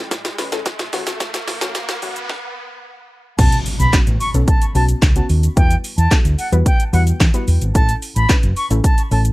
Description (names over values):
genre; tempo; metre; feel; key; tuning
dance-pop; 110 BPM; 4/4; straight; unclear; A4 = 440 Hz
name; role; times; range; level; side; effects
soft round pluck; accompaniment; 0.0-9.3 s; E3 to B4; -27 LUFS; left 3 dB; chorus, sidechain pumping
riser and impact; sound effects; 0.0-5.6 s; none; -28 LUFS; equal; none
fingered electric bass; bass; 0.1-9.3 s; F#1 to E3; -16 LUFS; equal; sidechain pumping
house drum kit; drums; 0.1-9.3 s; crash cymbal, handclaps, hi-hat, kick drum, shaker, snare drum; -17 LUFS; equal; none
bright reedy silver concert flute; melody; 3.4-9.2 s; F#5 to C#6; -22 LUFS; equal; sidechain pumping, tape echo
room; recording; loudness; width
little or no reverb; dark, warm production, high-pass filter; -14 LUFS; side -19 dB against mid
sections
0.0-3.4 A section; 3.4-9.3 B section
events
build-up 0.0-3.4; drum fill 0.0-2.3; riser 0.0-3.4; filter sweep 0.0-3.4; stop 2.3-3.4; drop 3.4-9.3; impact 3.4-5.6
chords
0.0 A; 0.9 F#m7; 3.4 Bsus2; 5.6 Emadd9; 7.8 A